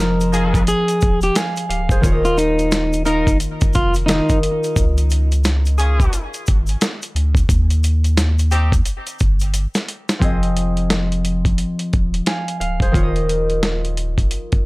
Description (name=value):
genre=hip hop, boom-bap hip-hop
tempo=88 BPM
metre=4/4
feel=swing 62% on 16ths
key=F minor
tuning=A4 = 440 Hz
part: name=electric guitar at the edge of break-up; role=melody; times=0.0-4.4 s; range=Eb4 to Bb4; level=-21 LUFS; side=equal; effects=tape echo
part: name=concert harp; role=accompaniment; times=0.0-4.8, 10.2-14.7 s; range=Eb3 to Ab5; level=-21 LUFS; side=left 1 dB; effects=cassette tape
part: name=warm sub bass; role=bass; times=0.0-14.3 s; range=D1 to Eb2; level=-18 LUFS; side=equal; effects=none
part: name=dusty soul sampler-style drum kit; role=drums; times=0.0-14.6 s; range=hi-hat, kick drum, snare drum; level=-18 LUFS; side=equal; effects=none
part: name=tube shaker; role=percussion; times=0.2-10.2 s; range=none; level=-34 LUFS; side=left 2 dB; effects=none
part: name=warm horn section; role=stabs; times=0.3-8.7 s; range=C4 to Bb4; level=-26 LUFS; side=left 1 dB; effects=tape echo
room=studio reverb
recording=dry, gritty hardware recording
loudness=-15 LUFS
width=side -22 dB against mid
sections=0.0-10.2 A section; 10.2-14.7 B section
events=drum fill 9.5-10.2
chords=0.0 Fm7; 2.0 Ebsus2; 4.8 Db; 7.5 Cm/Eb (rootless); 10.2 Fm7; 12.9 Ebsus2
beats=0.67 1.35 | 2.04 2.72 3.40 4.08 | 4.76 5.45 6.13 6.81 | 7.49 8.17 8.85 9.54 | 10.22 10.90 11.58 12.26 | 12.95 13.63 14.31